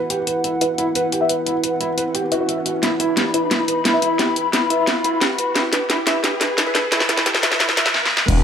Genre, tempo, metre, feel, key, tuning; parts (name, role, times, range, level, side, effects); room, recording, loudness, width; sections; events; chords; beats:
dark technical drum and bass; 176 BPM; 4/4; straight; A4 = 440 Hz
dark analog pad; sustained chords; 0.0-8.4 s; E4 to B5; -23 LUFS; left 2 dB; chorus, sidechain pumping
riser; sound effects; 0.2-8.3 s; -29 LUFS; left 1 dB
felt-muted upright piano; arpeggios; 0.1-7.9 s; E4 to E5; -23 LUFS; right 2 dB; sidechain pumping, low-pass filter, dub echo
drum and bass drum kit; drums; 0.1-8.4 s; crash cymbal, hi-hat, snare drum; -19 LUFS; equal
filtered dub chord stab; stabs; 0.6-7.9 s; E4 to E5; -25 LUFS; left 2 dB; phaser, lush chorus, dub echo
phased detuned saw bass; bass; 8.3-8.4 s; E1; -16 LUFS; equal; phaser, overdrive, sidechain pumping
electronic kick drum; drums; 8.3-8.4 s; -18 LUFS; equal
electronic ride cymbal; drums; 8.3-8.4 s; -35 LUFS; right 4 dB
moderate digital room reverb, RT60 1.1 s, digital ambience; high-pass filter; -16 LUFS; side -7 dB against mid
0.0-8.3 A section
build-up 0.0-8.3; filter sweep on synth stab 0.0-8.3; filter sweep 0.0-8.3; riser 0.2-8.3; drum fill 2.8-7.9, 7.9-8.3
0.0 Esus2
| 0.10 0.44 0.78 1.12 | 1.47 1.81 2.15 2.49 | 2.83 3.17 3.51 3.85 | 4.19 4.53 4.88 5.21 | 5.56 5.90 6.24 6.58 | 6.92 7.26 7.60 7.94 | 8.28